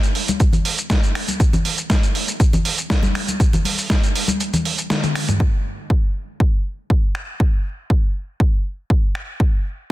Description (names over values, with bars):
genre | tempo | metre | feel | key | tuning
nu-disco | 120 BPM | 4/4 | straight | none | none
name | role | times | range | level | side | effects
dusty soul sampler-style drum kit | drums | 0.0-9.3 s | finger snaps, hi-hat, shaker, snare drum, toms | -22 LUFS | right 1 dB | overdrive
congas | percussion | 0.3-5.4 s | none | -24 LUFS | left 2 dB | none
electronic kick drum | drums | 0.4-9.5 s | none | -17 LUFS | equal | none
room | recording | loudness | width
light reverb | dense, heavily limited modern master | -17 LUFS | side -16 dB against mid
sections
0.0-5.4 A section; 5.4-9.9 B section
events
kick drops out 4.4-5.4; drum fill 4.9-5.4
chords
none